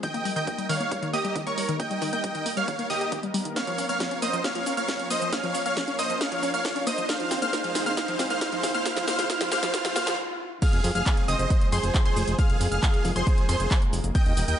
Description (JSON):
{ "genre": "uplifting trance", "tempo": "136 BPM", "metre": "4/4", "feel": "straight", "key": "F minor", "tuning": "A4 = 442 Hz", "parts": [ { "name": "supersaw chords", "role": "melody", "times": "0.0-14.6 s", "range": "G4 to G5", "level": "-29 LUFS", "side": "right 2 dB", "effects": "sidechain pumping, tape echo" }, { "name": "analog pluck", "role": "second line", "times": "0.0-14.6 s", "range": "C6 to G6", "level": "-32 LUFS", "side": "equal", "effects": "chorus, sidechain pumping" }, { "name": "lush unison pad", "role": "sustained chords", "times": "0.0-14.6 s", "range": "Eb3 to Bb4", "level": "-36 LUFS", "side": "equal", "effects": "chorus, sidechain pumping" }, { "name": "wide unison pluck", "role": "arpeggios", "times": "0.0-10.1 s", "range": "Eb3 to G4", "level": "-33 LUFS", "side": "left 3 dB", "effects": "sidechain pumping, tape echo" }, { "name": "electronic kick drum", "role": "drums", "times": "0.0-14.2 s", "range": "none", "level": "-25 LUFS", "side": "equal", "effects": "high-pass filter on kick, high-pass filter on room" }, { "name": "techno drum kit", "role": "drums", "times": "0.0-14.6 s", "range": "crash cymbal, handclaps, hi-hat, shaker, snare drum", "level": "-31 LUFS", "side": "equal", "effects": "none" }, { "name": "riser", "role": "sound effects", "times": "1.5-10.2 s", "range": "none", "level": "-35 LUFS", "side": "right 1 dB", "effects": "none" }, { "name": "fat analog bass", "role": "bass", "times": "10.7-14.6 s", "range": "Eb1 to F2", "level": "-26 LUFS", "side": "equal", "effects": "sidechain pumping" } ], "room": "light reverb", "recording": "high-pass filter, nothing above 10.7 kHz", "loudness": "-23 LUFS", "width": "side -10 dB against mid", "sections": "0.0-10.6 A section; 10.6-14.6 B section", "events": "build-up 0.0-10.6; filter sweep on synth arpeggio sound 0.0-10.6; riser 1.5-10.2; drum fill 3.6-10.2; stop 10.2-10.6; drop 10.6-14.6", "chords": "0.0 Eb; 3.6 Bbm; 7.1 Ab; 10.6 Fm" }